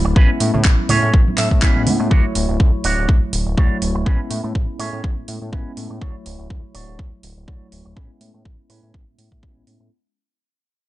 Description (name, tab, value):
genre	filtered disco house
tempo	123 BPM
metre	4/4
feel	swing 55% on 16ths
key	A major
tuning	A4 = 441 Hz
part	bell-like tine electric piano	accompaniment	0.0-9.9 s	F#3 to C#5	-25 LUFS	equal	fast stereo tremolo, phaser, sidechain pumping, low-pass filter
part	electric guitar with an envelope filter	riff	0.0-9.8 s	C#4 to F#5	-24 LUFS	right 3 dB	vintage 12-bit sampler grit, sidechain pumping, low-pass filter
part	fat analog bass	bass	0.0-9.9 s	D1 to A2	-22 LUFS	equal	tube saturation, sidechain pumping, low-pass filter
part	tube shaker and congas	percussion	0.1-2.1 s	none	-25 LUFS	right 3 dB	sidechain pumping on perc, low-pass filter on perc
part	electronic kick drum	drums	0.2-9.5 s	none	-15 LUFS	equal	none
part	house drum kit	drums	0.4-9.8 s	handclaps, hi-hat	-24 LUFS	right 2 dB	sidechain pumping on hats
room	digital ambience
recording	nothing above 10.3 kHz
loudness	-15 LUFS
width	side -16 dB against mid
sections	0.0-9.9 A section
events	fade-out 0.0-9.9; filter sweep on analog synth bass 0.0-9.9; filter sweep 0.0-9.9; clean electric guitar fill 1.1-2.1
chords	0.2 Amaj9; 2.1 Dmaj7; 4.1 Amaj9; 6.0 Dmaj7; 8.0 Amaj9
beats	| 0.16 0.65 1.14 1.62 | 2.11 2.60 3.09 3.57 | 4.06 4.55 5.04 5.53 | 6.01 6.50 6.99 7.48 | 7.96 8.45 8.94 9.43